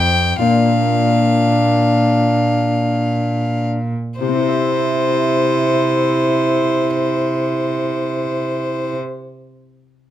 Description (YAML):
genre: classical, renaissance-style consort dance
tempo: free time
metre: none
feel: none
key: C mixolydian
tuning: A4 = 440 Hz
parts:
  - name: rich violin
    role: melody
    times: 0.0-9.0 s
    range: C5 to G5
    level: -19 LUFS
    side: left 2 dB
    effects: none
  - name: Celtic harp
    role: accompaniment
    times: 0.0-9.4 s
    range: F2 to E5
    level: -25 LUFS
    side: left 9 dB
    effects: none
  - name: warm trombone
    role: accompaniment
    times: 0.0-9.0 s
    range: C4 to E4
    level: -20 LUFS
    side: equal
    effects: none
  - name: warm cello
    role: bass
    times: 0.0-9.0 s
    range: F2 to C3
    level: -20 LUFS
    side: right 2 dB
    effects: none
room: light reverb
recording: close, detailed microphones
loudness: -14 LUFS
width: side -12 dB against mid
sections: 0.0-4.2 A section; 4.2-8.2 B section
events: slowing down 0.0-4.2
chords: 0.4 Bb; 4.2 C